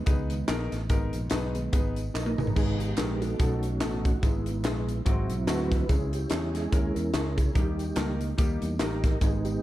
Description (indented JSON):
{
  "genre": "uptempo gospel",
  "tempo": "144 BPM",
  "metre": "4/4",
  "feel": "swing 57% on 8ths",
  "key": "G# harmonic minor",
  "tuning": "A4 = 440 Hz",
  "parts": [
    { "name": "mellow tonewheel organ", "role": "sustained chords", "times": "0.0-9.6 s", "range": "D#3 to B4", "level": "-32 LUFS", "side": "right 2 dB", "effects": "slow rotary speaker, chorus vibrato" },
    { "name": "warm concert grand piano", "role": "accompaniment", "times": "0.1-9.6 s", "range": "G#2 to D#5", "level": "-34 LUFS", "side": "left 2 dB", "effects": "none" },
    { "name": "fingered electric bass", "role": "bass", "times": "0.1-9.6 s", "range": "G#1 to E2", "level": "-31 LUFS", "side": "equal", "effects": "none" },
    { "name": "crisp fusion drum kit", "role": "drums", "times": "0.1-9.5 s", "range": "crash cymbal, hi-hat, kick drum, snare drum, toms", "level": "-28 LUFS", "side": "equal", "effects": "none" },
    { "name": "tambourine and handclaps", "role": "percussion", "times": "0.1-9.5 s", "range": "none", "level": "-45 LUFS", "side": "right 5 dB", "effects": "none" }
  ],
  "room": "light reverb, small room ambience",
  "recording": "dark, warm production",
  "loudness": "-25 LUFS",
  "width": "side -15 dB against mid",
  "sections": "0.0-2.6 A section; 2.6-9.6 B section",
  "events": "drum fill 2.1-2.6; tonewheel organ solo 2.6-9.6",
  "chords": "0.0 G#m; 3.4 B7; 4.2 E/G#; 5.1 G#7alt; 5.9 C#m; 7.6 D#",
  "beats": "0.07 0.48 | 0.90 1.32 1.73 2.15 | 2.56 2.98 3.40 3.81 | 4.23 4.64 5.06 5.48 | 5.89 6.31 6.72 7.14 | 7.56 7.97 8.39 8.80 | 9.22"
}